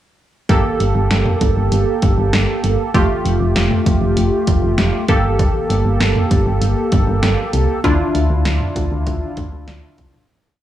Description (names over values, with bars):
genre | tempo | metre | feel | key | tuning
synth-pop | 98 BPM | 4/4 | straight | G dorian | A4 = 441 Hz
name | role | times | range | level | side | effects
funky polysynth comp | accompaniment | 0.5-10.2 s | A3 to A4 | -18 LUFS | equal | chorus
solid FM bass | bass | 0.5-10.1 s | F1 to D2 | -17 LUFS | equal | none
punchy analog drum machine | drums | 0.5-10.3 s | hi-hat, kick drum, snare drum, toms | -19 LUFS | equal | none
room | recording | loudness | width
little or no reverb | dry, gritty hardware recording, studio ambience | -14 LUFS | side -12 dB against mid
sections
0.5-10.3 verse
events
fade-out 7.8-10.3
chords
0.5 Gmadd9; 2.9 Fadd9; 5.1 Gmadd9; 7.8 Dmadd9